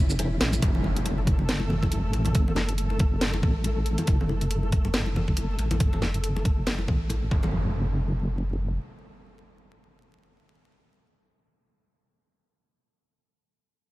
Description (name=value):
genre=deep dubstep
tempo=139 BPM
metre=4/4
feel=swing 57% on 16ths, half-time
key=F# minor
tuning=A4 = 441 Hz
part: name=deep soft wobble bass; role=bass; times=0.0-8.8 s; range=E1 to A1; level=-27 LUFS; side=equal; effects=chorus
part: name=flickering grainy texture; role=texture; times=0.0-7.5 s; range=A3 to A4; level=-36 LUFS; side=equal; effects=built-in reverb
part: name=garage drum kit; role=drums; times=0.1-7.2 s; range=hi-hat, shaker, snare drum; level=-31 LUFS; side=equal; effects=none
part: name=congas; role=percussion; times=0.2-7.5 s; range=none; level=-33 LUFS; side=left 1 dB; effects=dub echo
part: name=electronic kick drum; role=drums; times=0.6-7.4 s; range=none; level=-23 LUFS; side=equal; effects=none
part: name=impact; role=sound effects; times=0.6-2.4, 7.3-11.6 s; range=none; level=-34 LUFS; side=equal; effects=none
room=digital ambience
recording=vinyl crackle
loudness=-23 LUFS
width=side -18 dB against mid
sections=0.6-7.5 A section; 7.5-11.0 B section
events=break 0.2-0.6; drum fill 0.4; impact 0.6-2.4; filter sweep on wobble bass 0.6-7.5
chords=0.0 F#m; 7.5 N.C.